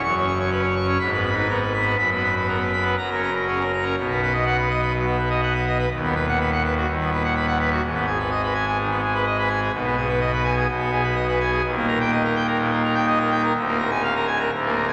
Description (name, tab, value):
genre	classical, organ toccata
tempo	125 BPM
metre	4/4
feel	straight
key	B major, Eb major from 11.6 s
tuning	A4 = 441 Hz
part	pipe organ, full organ	solo	0.0-14.9 s	D1 to C#6	-22 LUFS	equal	none
room	wet church reverb, RT60 3.2 s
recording	none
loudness	-22 LUFS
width	mono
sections	0.0-4.0 A section; 4.0-14.9 B section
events	none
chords	0.0 F#5; 1.0 G#m; 2.0 B5/F#; 3.0 F#; 4.0 B; 5.9 B/D#; 7.8 G#m; 9.7 G#m/B; 11.6 Eb; 13.6 Bb7/D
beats	| 0.03 0.51 1.00 1.48 | 1.98 2.48 2.98 3.48 | 3.98 4.46 4.94 5.42 | 5.90 6.39 6.87 7.35 | 7.83 8.31 8.79 9.26 | 9.73 10.21 10.69 11.17 | 11.64 12.12 12.60 13.08 | 13.56 14.04 14.53